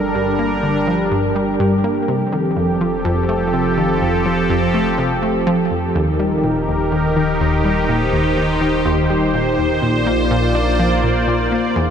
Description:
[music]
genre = ambient, sequencer-driven space music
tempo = 124 BPM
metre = 4/4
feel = straight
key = unclear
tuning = A4 = 440 Hz
[part]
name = sweeping resonant pad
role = sustained chords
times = 0.0-11.9 s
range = Eb3 to D5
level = -17 LUFS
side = equal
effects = chorus
[part]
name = analog pluck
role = riff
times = 0.0-11.9 s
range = Eb2 to D4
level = -20 LUFS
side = equal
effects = chorus, analog delay
[part]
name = round analog bass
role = bass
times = 0.0-11.9 s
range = Eb1 to Bb1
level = -27 LUFS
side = equal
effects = none
[sound]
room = wet huge ambient reverb, RT60 8.0 s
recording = dreamy mix soaked in reverb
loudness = -15 LUFS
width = side -8 dB against mid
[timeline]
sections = 0.0-11.9 A section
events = fade-in on analog synth bass 0.0-11.9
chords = 0.0 Gm; 2.1 Fadd9; 6.0 Eb; 9.8 Bbadd9

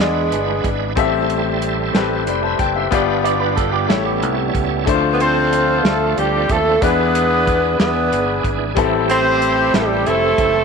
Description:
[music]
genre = slow gospel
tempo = 62 BPM (dotted quarters)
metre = 6/8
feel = straight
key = unclear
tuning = A4 = 440 Hz
[part]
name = breathy tenor saxophone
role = melody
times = 0.0-0.7, 5.1-10.6 s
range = G3 to C4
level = -19 LUFS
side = right 3 dB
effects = none
[part]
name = warm horn section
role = melody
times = 0.0-0.9, 5.2-10.6 s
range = B3 to C5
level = -20 LUFS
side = left 2 dB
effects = none
[part]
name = bright grand piano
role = accompaniment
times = 0.0-10.6 s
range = G2 to B5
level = -20 LUFS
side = left 12 dB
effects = none
[part]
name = bright tonewheel organ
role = sustained chords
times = 0.0-10.6 s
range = E3 to E5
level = -24 LUFS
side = right 12 dB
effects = slow rotary speaker, chorus vibrato
[part]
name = fingered electric bass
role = bass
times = 0.0-10.6 s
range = F1 to E2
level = -24 LUFS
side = right 1 dB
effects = none
[part]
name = warm soul drum kit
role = drums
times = 0.0-10.5 s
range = hi-hat, kick drum, snare drum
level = -21 LUFS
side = right 2 dB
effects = none
[part]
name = electric guitar with an envelope filter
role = second line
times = 3.2-4.8 s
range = B3 to D5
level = -22 LUFS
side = right 12 dB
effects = warbly pitch drift
[sound]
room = light reverb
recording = 1960s-style stereo with parts hard left and right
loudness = -14 LUFS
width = side -5 dB against mid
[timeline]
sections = 0.0-10.6 A section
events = none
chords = 0.0 E7; 1.0 Am7; 2.9 G7; 3.9 A7; 4.9 Dm7; 6.8 E7; 8.8 Am7

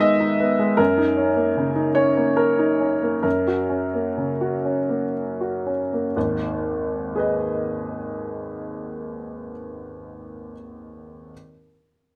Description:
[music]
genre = neoclassical minimalist piano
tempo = 58-80 BPM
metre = 3/4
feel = rubato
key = G# minor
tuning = A4 = 440 Hz
[part]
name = clear grand piano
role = solo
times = 0.0-11.3 s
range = G#1 to E5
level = -23 LUFS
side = equal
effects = none
[sound]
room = little or no reverb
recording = recorded outdoors, with no room sound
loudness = -22 LUFS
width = mono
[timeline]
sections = 0.0-6.1 A section; 6.1-9.1 B section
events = slowing down 0.0-6.1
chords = 0.0 G#m; 0.8 D#m7/F#; 3.2 F#; 6.1 G#m

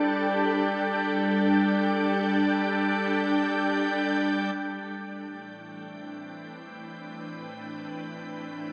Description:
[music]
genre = ambient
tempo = free time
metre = none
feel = none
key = A minor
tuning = A4 = 443 Hz
[part]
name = soft additive organ-like pad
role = sustained chords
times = 0.0-8.7 s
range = A2 to G5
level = -25 LUFS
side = equal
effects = ensemble chorus, built-in reverb
[part]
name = soft synth bell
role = arpeggios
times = 0.0-4.6 s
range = none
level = barely audible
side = none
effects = none
[part]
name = analog drone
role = drone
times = 5.6-8.7 s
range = A3 to E4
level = -51 LUFS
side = equal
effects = none
[sound]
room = wet cathedral reverb, RT60 5.4 s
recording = cassette tape, small speaker sound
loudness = -23 LUFS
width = side -32 dB against mid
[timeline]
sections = 0.0-4.6 A section; 4.6-8.7 B section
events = none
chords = 0.0 Gsus2; 4.6 Am11

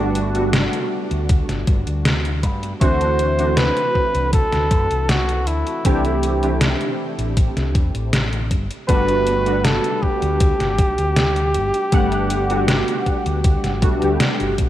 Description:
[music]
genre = vaporwave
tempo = 79 BPM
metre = 4/4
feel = straight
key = G major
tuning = A4 = 440 Hz
[part]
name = warm flugelhorn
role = melody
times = 0.0-14.2 s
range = D4 to C5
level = -22 LUFS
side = equal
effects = tape echo
[part]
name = warbly lo-fi synth keys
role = accompaniment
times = 0.0-14.7 s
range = E3 to F#5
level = -23 LUFS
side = right 1 dB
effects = ensemble chorus, analog delay
[part]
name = fingered electric bass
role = bass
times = 0.0-14.7 s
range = G1 to G2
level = -23 LUFS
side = equal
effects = none
[part]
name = detuned 8-bit digital drum machine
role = drums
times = 0.2-14.7 s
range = hi-hat, snare drum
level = -23 LUFS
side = equal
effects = gated reverb
[part]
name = electronic kick drum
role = drums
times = 1.3-14.7 s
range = none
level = -18 LUFS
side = equal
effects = none
[sound]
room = light reverb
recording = cassette tape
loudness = -16 LUFS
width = side -13 dB against mid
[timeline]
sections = 0.0-14.7 A section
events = none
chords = 0.0 Gmaj9; 2.8 D7; 5.8 C6; 8.5 Gmaj9

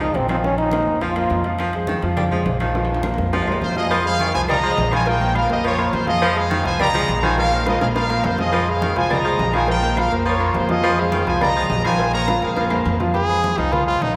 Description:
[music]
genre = latin, salsa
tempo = 208 BPM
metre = 4/4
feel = straight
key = F minor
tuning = A4 = 440 Hz
[part]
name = brilliant trombone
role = melody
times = 0.0-1.4 s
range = C4 to F4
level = -26 LUFS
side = equal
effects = none
[part]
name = clear baritone saxophone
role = second line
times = 0.0-12.9 s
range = Eb3 to G3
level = -28 LUFS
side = equal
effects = none
[part]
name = clear concert grand piano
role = accompaniment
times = 0.0-14.1 s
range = F3 to F5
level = -25 LUFS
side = equal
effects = none
[part]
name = upright bass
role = bass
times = 0.0-14.2 s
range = Bb1 to Bb2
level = -27 LUFS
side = equal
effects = none
[part]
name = bongos and cowbell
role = percussion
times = 0.0-14.2 s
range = none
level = -33 LUFS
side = equal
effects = none
[part]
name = congas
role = percussion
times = 0.1-14.2 s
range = none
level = -32 LUFS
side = equal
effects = none
[part]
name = timbales and agogo bells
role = percussion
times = 0.1-14.2 s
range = none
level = -31 LUFS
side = equal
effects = none
[part]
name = claves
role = percussion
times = 0.3-12.9 s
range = none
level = -41 LUFS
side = equal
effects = none
[part]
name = brilliant trumpet section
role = melody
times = 3.6-13.0 s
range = F4 to Bb5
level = -25 LUFS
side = equal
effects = none
[part]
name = bright trumpet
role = melody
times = 13.1-14.2 s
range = Eb4 to Ab4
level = -22 LUFS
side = equal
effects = none
[sound]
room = wet church reverb, RT60 3.3 s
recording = recorded in a church or concert hall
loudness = -19 LUFS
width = mono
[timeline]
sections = 0.0-3.9 A section; 3.9-13.1 B section; 13.1-14.2 C section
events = drum fill 2.8-3.9, 7.7-8.5, 12.3-13.1; trumpet solo 13.1-14.2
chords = 0.4 Bbsus2; 1.6 Fm7; 2.8 Bbsus2; 3.9 Fm7; 7.4 Bbsus2; 8.5 Fm7; 9.7 Bbmadd9; 10.8 Fm7; 12.0 Bbmadd9; 13.1 Fm

